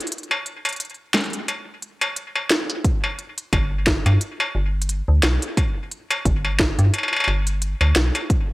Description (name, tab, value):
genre	IDM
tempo	88 BPM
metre	4/4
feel	swing 56% on 16ths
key	G major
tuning	A4 = 440 Hz
part	industrial drum kit	drums	0.0-8.5 s	hi-hat, snare drum, struck metal	-22 LUFS	equal	analog delay
part	electronic kick drum	drums	2.8-8.5 s	none	-21 LUFS	equal	none
part	metallic FM bass	bass	3.5-8.1 s	G1 to G2	-19 LUFS	equal	none
room	little or no reverb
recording	dry, gritty hardware recording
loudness	-19 LUFS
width	side -20 dB against mid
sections	0.0-8.5 A section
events	kick drops out 0.1-2.8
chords	none